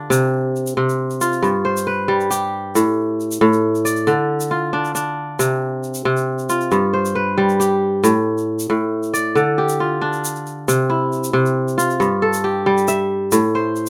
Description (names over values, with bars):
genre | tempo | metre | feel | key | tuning
west african traditional, West African string and xylophone music | 91 BPM (dotted quarters) | 12/8 | straight | C major | A4 = 440 Hz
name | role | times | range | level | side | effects
kora | arpeggios | 0.0-13.9 s | G2 to E5 | -19 LUFS | equal | none
egg shaker | percussion | 0.1-13.9 s | none | -30 LUFS | equal | none
room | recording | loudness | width
light reverb | none | -19 LUFS | mono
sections
0.0-10.7 A section; 10.7-13.9 B section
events
none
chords
0.1 Csus4; 1.4 G; 2.8 Asus4; 4.1 Dm; 5.4 Csus4; 6.7 G; 8.0 Asus4; 9.4 Dm; 10.7 C; 12.0 Fmaj9/G; 13.3 Am